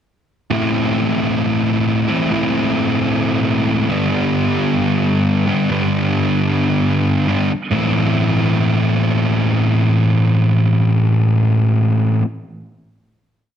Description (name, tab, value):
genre	rock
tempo	free time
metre	none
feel	none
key	A minor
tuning	A4 = 441 Hz
part	fuzz guitar	solo	0.5-12.3 s	G2 to E4	-14 LUFS	equal	distortion
room	moderate large studio reverb, RT60 1.3 s, digital ambience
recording	dense, heavily limited modern master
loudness	-14 LUFS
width	side -9 dB against mid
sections	0.5-7.7 verse; 7.7-11.3 final chord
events	none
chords	0.5 Am; 3.9 G; 7.7 Am